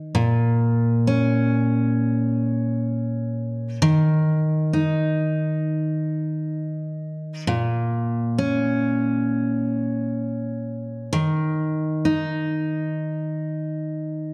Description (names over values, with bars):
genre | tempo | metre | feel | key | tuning
pop | 66 BPM | 4/4 | straight | unclear | A4 = 440 Hz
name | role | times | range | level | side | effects
picked steel-string acoustic guitar | solo | 0.0-14.3 s | Bb2 to Eb4 | -23 LUFS | equal | none
room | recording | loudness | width
moderate concert hall reverb, RT60 1.8 s | dark, warm production | -23 LUFS | mono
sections
0.0-14.3 A section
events
none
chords
0.1 Bbm; 3.8 N.C.; 7.5 Bbm; 11.1 N.C.